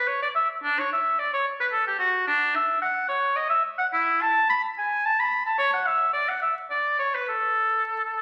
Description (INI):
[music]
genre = classical, baroque-style fantasia for unaccompanied oboe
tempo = 108 BPM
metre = 3/4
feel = uneven beats, rubato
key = A major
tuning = A4 = 440 Hz
[part]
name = clear oboe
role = solo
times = 0.0-8.2 s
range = D4 to B5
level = -24 LUFS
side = equal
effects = none
[sound]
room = wet recital hall reverb, RT60 1.4 s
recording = very old 78 rpm record, vinyl crackle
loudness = -24 LUFS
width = mono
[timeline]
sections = 0.0-8.2 A section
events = none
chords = none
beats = 0.08 | 0.65 1.20 1.74 | 2.28 2.82 3.36 | 3.93 4.49 5.04 | 5.59 6.14 6.71 | 7.28 7.86